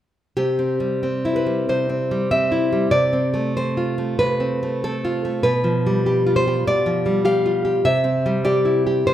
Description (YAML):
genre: romantic piece for solo classical guitar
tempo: 96 BPM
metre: 4/4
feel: uneven beats, rubato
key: C major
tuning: A4 = 440 Hz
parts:
  - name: nylon-string guitar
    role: solo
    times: 0.4-9.1 s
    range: B2 to F5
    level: -18 LUFS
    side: equal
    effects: none
room: moderate recital hall reverb, RT60 1.4 s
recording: recorded in a church or concert hall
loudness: -18 LUFS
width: side -11 dB against mid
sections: 0.4-9.1 A section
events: none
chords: 0.4 C; 2.9 Dm7/C; 5.4 G7/B; 7.9 C